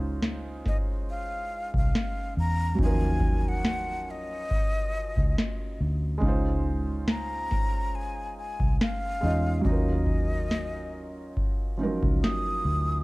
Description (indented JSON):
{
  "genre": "lo-fi hip hop",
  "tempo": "70 BPM",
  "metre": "4/4",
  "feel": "swing 55% on 16ths",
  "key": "Db major",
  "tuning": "A4 = 440 Hz",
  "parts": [
    { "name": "felt-muted upright piano", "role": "accompaniment", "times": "0.0-13.0 s", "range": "F3 to Eb5", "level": "-33 LUFS", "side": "right 2 dB", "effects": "cassette tape" },
    { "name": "vintage muted fingered electric bass", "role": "bass", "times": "0.0-13.0 s", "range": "C2 to Fb2", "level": "-28 LUFS", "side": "equal", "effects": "none" },
    { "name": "booming analog drum machine", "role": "drums", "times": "0.2-12.4 s", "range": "kick drum, snare drum", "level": "-28 LUFS", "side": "equal", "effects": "none" },
    { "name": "breathy jazz flute", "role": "melody", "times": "0.7-13.0 s", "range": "Eb5 to Eb6", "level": "-33 LUFS", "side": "left 1 dB", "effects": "none" }
  ],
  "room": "light reverb, small room ambience",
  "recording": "dark, warm production",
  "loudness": "-25 LUFS",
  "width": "side -22 dB against mid",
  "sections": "0.0-13.0 A section",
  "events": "break 0.0-13.0",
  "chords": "0.0 Dbmaj7; 2.8 Ebm7; 6.2 Dbmaj7; 9.6 Ebm7"
}